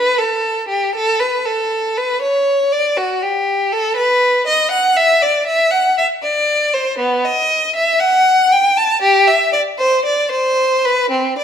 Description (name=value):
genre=classical, baroque-style suite movement for unaccompanied violin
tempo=59 BPM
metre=4/4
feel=rubato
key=E minor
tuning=A4 = 441 Hz
part: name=rich violin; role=solo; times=0.0-11.4 s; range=B3 to A5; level=-13 LUFS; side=equal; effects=none
room=moderate recital hall reverb, RT60 1.6 s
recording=minimal, uncompressed stereo recording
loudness=-13 LUFS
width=side -8 dB against mid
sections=0.0-11.4 A section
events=none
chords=none